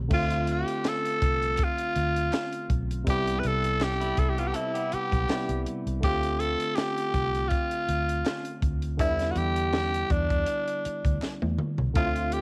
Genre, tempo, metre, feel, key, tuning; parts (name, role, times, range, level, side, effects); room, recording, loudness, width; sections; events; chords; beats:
lush 1970s-style soul; 81 BPM; 4/4; swing 54% on 16ths; D dorian; A4 = 439 Hz
barky tine electric piano; accompaniment; 0.0-12.4 s; C3 to F4; -36 LUFS; equal
vintage muted fingered electric bass; bass; 0.0-12.4 s; B1 to E2; -32 LUFS; equal
growling tenor saxophone; melody; 0.1-12.4 s; D4 to B4; -31 LUFS; equal; cassette tape
compact cocktail drum kit; drums; 0.1-12.4 s; crash cymbal, hi-hat, kick drum, snare drum, toms; -32 LUFS; equal; cassette tape
group handclap; percussion; 0.9-11.4 s; -48 LUFS; equal
electric guitar through a small old amp; riff; 4.0-5.8 s; G3 to A4; -39 LUFS; equal
light reverb, studio ambience; home recording on cassette; -27 LUFS; mono
0.1-12.4 A section
drum fill 11.2-12.0
0.1 Dm7; 3.1 Cmaj7; 6.0 Dm7; 9.0 Em7
| 0.11 0.85 1.59 2.33 | 3.07 3.81 4.55 5.29 | 6.03 6.77 7.51 8.25 | 8.99 9.73 10.47 11.22 | 11.96